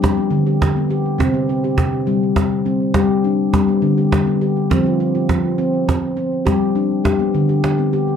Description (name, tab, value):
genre	world meditative, meditative tuned percussion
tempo	68 BPM (dotted quarters)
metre	6/8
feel	straight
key	unclear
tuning	A4 = 440 Hz
part	handpan	arpeggios	0.0-8.2 s	C3 to G4	-16 LUFS	left 1 dB	tape echo
part	cajon	percussion	0.0-8.2 s	none	-20 LUFS	right 2 dB	none
room	wet studio reverb, RT60 0.5 s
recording	dark, warm production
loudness	-15 LUFS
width	side -8 dB against mid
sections	0.0-8.2 A section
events	none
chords	0.0 G; 1.2 C5; 2.9 G; 4.7 F5; 6.5 G